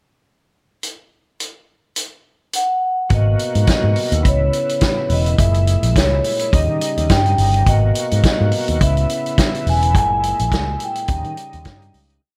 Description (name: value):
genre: disco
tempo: 105 BPM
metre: 4/4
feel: swing 56% on 16ths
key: G# minor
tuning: A4 = 440 Hz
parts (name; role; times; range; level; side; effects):
- vintage drum kit; drums; 0.8-12.2 s; hi-hat, kick drum, snare drum; -22 LUFS; equal; none
- vibraphone with soft mallets; melody; 2.6-11.9 s; C#5 to G#5; -23 LUFS; equal; none
- overdriven tonewheel organ; sustained chords; 3.1-12.2 s; A#2 to F#4; -28 LUFS; equal; chorus vibrato, slow rotary speaker
- picked electric bass with an envelope filter; bass; 3.1-12.2 s; E1 to D#3; -20 LUFS; equal; none
room: light reverb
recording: none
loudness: -17 LUFS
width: mono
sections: 0.8-3.1 pickup bar; 3.1-12.2 verse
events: fade-out 9.9-12.2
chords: 0.8 N.C.; 3.1 G#m9; 4.2 C#m7; 5.4 F#9; 6.5 D#7; 7.7 G#m9; 8.8 C#m7; 9.9 F#9; 11.1 D#7